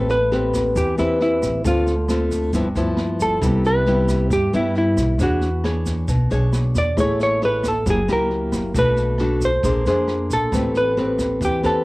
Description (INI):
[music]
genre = bossa nova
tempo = 135 BPM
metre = 4/4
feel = straight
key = A minor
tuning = A4 = 440 Hz
[part]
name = hollow-body jazz guitar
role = melody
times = 0.0-11.8 s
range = E4 to D5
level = -21 LUFS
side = equal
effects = cassette tape
[part]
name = nylon-string guitar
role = accompaniment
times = 0.0-11.8 s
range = G2 to C#5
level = -21 LUFS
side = left 1 dB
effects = cassette tape
[part]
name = upright bass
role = bass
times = 0.0-11.8 s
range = F#1 to G2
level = -23 LUFS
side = equal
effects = none
[part]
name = jazz brush drum kit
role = drums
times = 0.1-11.7 s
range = kick drum, rim click, snare drum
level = -28 LUFS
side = right 1 dB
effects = none
[part]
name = egg shaker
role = percussion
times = 0.1-11.8 s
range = none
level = -39 LUFS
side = right 3 dB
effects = none
[sound]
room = light reverb, small room reverb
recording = home recording on cassette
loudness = -17 LUFS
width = side -21 dB against mid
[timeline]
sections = 0.0-11.8 A section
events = none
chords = 0.0 Am9; 1.6 Dm7; 2.5 G6; 3.4 Cmaj7; 5.2 E13; 7.0 Amaj7; 7.9 F#7b9; 8.7 Bm7; 9.6 Bb9; 10.5 Am9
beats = 0.31 0.75 1.20 | 1.64 2.09 2.53 2.97 | 3.42 3.86 4.31 4.75 | 5.20 5.64 6.08 6.53 | 6.97 7.42 7.86 8.30 | 8.75 9.19 9.63 10.08 | 10.52 10.97 11.41